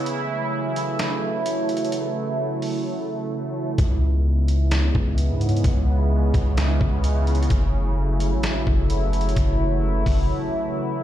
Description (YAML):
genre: hip hop, atmospheric cloud-rap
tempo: 129 BPM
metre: 4/4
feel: half-time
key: unclear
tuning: A4 = 438 Hz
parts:
  - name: sweeping resonant pad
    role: sustained chords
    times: 0.0-11.0 s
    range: C#3 to E4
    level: -24 LUFS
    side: right 1 dB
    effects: chorus, sidechain pumping
  - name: trip hop sampler-style drum kit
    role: drums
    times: 0.1-10.2 s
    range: hi-hat, kick drum, snare drum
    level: -25 LUFS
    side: equal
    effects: none
  - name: long sustained 808-style bass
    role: bass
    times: 3.8-10.3 s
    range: F#1 to G#2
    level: -20 LUFS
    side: equal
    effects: none
room: little or no reverb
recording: played on a big sound system in a bare room, large studio reverb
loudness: -20 LUFS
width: side -12 dB against mid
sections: 0.0-11.0 A section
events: break 0.0-3.8, 10.3-11.0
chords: 0.1 F#m7; 3.8 C#m7; 7.5 F#m7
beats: | 0.06 0.53 0.99 1.46 | 1.92 2.39 2.85 3.32 | 3.78 4.25 4.71 5.18 | 5.64 6.11 6.57 7.04 | 7.50 7.97 8.44 8.90 | 9.37 9.83 10.29 10.76